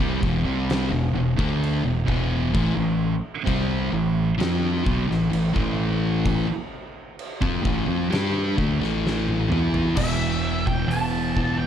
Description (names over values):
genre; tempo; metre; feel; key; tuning
stoner and doom metal; 65 BPM; 4/4; straight; unclear; A4 = 440 Hz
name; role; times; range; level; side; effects
fuzz guitar; riff; 0.0-11.7 s; E2 to G4; -26 LUFS; left 9 dB; distortion
thick fuzz guitar; riff; 0.0-11.7 s; E2 to G4; -25 LUFS; right 7 dB; distortion
growling fingered electric bass; bass; 0.0-11.7 s; E1 to G2; -27 LUFS; equal; overdrive
oversized low-tuned drum kit; drums; 0.0-11.6 s; crash cymbal, hi-hat, kick drum, snare drum, toms; -28 LUFS; equal; none
octave-fuzz lead guitar; melody; 10.0-11.7 s; E5 to A5; -28 LUFS; right 1 dB; wah, distortion
room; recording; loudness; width
little or no reverb; dark, warm production; -20 LUFS; side -9 dB against mid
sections
0.0-10.0 A section; 10.0-11.7 B section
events
drum fill 9.0-10.0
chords
0.0 Em; 2.5 A5; 10.0 E5